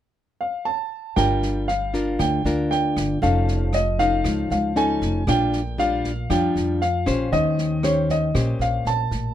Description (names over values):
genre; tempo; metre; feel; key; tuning
bossa nova; 117 BPM; 4/4; straight; G minor; A4 = 443 Hz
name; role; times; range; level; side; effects
warm baby grand piano; melody; 0.4-9.3 s; C#5 to A5; -24 LUFS; right 1 dB; none
nylon-string guitar; accompaniment; 1.2-9.3 s; Bb2 to C5; -23 LUFS; left 2 dB; none
upright bass; bass; 1.2-9.3 s; F1 to F2; -26 LUFS; right 1 dB; none
open jazz drum kit; drums; 1.2-9.2 s; kick drum, rim click, snare drum; -33 LUFS; right 2 dB; none
room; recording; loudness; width
light reverb; minimal, uncompressed stereo recording; -19 LUFS; side -11 dB against mid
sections
0.0-1.2 A section; 1.2-9.3 B section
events
none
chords
0.0 N.C.; 1.2 Gm7; 3.2 F7alt; 5.3 Bb6; 7.3 Eb6